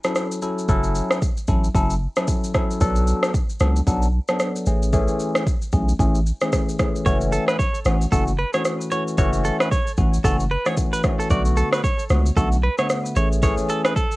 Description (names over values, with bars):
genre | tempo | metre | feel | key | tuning
afrobeats | 113 BPM | 4/4 | swing 58% on 16ths | F# minor | A4 = 436 Hz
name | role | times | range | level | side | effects
bell-like tine electric piano | accompaniment | 0.0-13.9 s | D3 to A4 | -24 LUFS | left 1 dB | phaser, cassette tape
afro-pop drum kit | drums | 0.0-14.2 s | kick drum, rim click, shaker | -22 LUFS | equal | overdrive, cassette tape
punchy sub bass | bass | 0.7-13.6 s | F#1 to C#2 | -20 LUFS | equal | none
direct-recorded clean electric guitar | riff | 7.1-14.2 s | A4 to D5 | -26 LUFS | right 2 dB | cassette tape, analog delay
room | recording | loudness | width
little or no reverb | home recording on cassette | -18 LUFS | side -20 dB against mid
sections
0.0-14.2 A section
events
none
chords
0.0 F#m7; 2.8 Bm7; 4.7 Amaj7; 7.1 F#m7; 11.3 Bm7; 13.2 Amaj7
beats
0.16 | 0.69 1.22 1.75 2.28 | 2.81 3.34 3.87 4.40 | 4.93 5.46 6.00 6.53 | 7.06 7.59 8.12 8.65 | 9.18 9.71 10.24 10.78 | 11.31 11.84 12.37 12.90 | 13.43 13.96